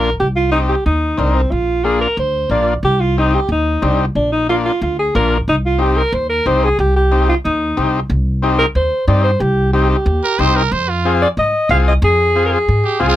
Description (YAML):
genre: latin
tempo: 182 BPM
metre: 4/4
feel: straight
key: C minor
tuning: A4 = 439 Hz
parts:
  - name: mellow alto saxophone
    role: melody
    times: 0.0-13.2 s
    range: C4 to F5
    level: -16 LUFS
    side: equal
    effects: none
  - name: overdriven combo organ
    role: accompaniment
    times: 0.0-13.2 s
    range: Bb3 to Bb4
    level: -17 LUFS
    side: left 3 dB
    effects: none
  - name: upright bass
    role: bass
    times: 0.0-13.2 s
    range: Bb1 to Ab2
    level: -17 LUFS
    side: equal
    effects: none
  - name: growling trumpet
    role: second line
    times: 10.2-13.2 s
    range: F4 to C5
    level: -18 LUFS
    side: right 5 dB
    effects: none
room: little or no reverb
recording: none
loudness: -13 LUFS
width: side -13 dB against mid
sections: 0.0-8.1 A section; 8.1-13.2 B section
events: none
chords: 0.2 Cm; 1.5 Bb; 2.8 Cm; 4.2 Bb; 5.5 Cm; 10.7 Fm